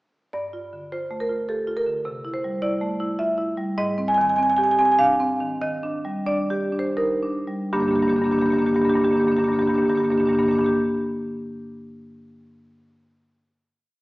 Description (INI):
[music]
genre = classical, contemporary piece for solo marimba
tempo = 78-106 BPM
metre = 3/4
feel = rubato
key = unclear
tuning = A4 = 440 Hz
[part]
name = marimba with medium hard mallets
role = solo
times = 0.3-10.7 s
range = G2 to Ab5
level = -20 LUFS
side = equal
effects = none
[sound]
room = wet recital hall reverb, RT60 1.6 s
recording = heard from further back in the room, small speaker sound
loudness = -20 LUFS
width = side -20 dB against mid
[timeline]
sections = 0.3-7.7 A section; 7.7-12.3 final chord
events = slowing down 2.9-7.7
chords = 0.3 Gsus2; 2.1 C69; 3.8 Abmaj7; 5.6 Ebmaj7; 7.7 Gm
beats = | 0.35 0.93 1.50 | 2.08 2.64 3.21 | 3.79 4.39 5.00 | 5.62 6.28 6.98 | 7.74 8.51 9.28 | 10.04